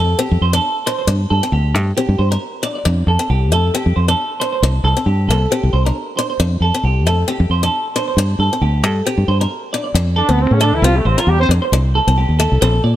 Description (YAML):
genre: highlife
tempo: 135 BPM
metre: 4/4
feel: swing 55% on 16ths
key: F major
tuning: A4 = 439 Hz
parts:
  - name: picked swing-style acoustic guitar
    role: accompaniment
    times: 0.0-12.8 s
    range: A3 to D4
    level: -22 LUFS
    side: left 4 dB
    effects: none
  - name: semi-hollow electric guitar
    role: arpeggios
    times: 0.0-12.9 s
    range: G4 to D5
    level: -20 LUFS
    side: right 2 dB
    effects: phaser, slapback echo
  - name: fingered electric bass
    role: bass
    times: 0.0-13.0 s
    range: A1 to Bb2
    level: -14 LUFS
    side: equal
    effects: none
  - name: mellow horn section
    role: melody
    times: 10.2-11.5 s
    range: C3 to C5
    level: -18 LUFS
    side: right 1 dB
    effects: none
room: light reverb, studio ambience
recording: none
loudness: -14 LUFS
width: side -13 dB against mid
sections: 0.0-9.9 A section; 9.9-13.0 B section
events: horn section solo 9.9-13.0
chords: 0.0 Fadd9; 1.1 Gsus2; 2.9 Fadd9; 4.6 Csus2; 6.4 Fadd9; 8.2 Gsus2; 9.9 F; 10.8 Csus4; 11.7 Cm69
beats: 0.19 0.63 | 1.08 1.52 1.97 2.41 | 2.85 3.30 3.74 4.18 | 4.63 5.07 5.51 5.96 | 6.40 6.84 7.29 7.73 | 8.17 8.62 9.06 9.50 | 9.95 10.39 10.83 11.28 | 11.72 12.17 12.61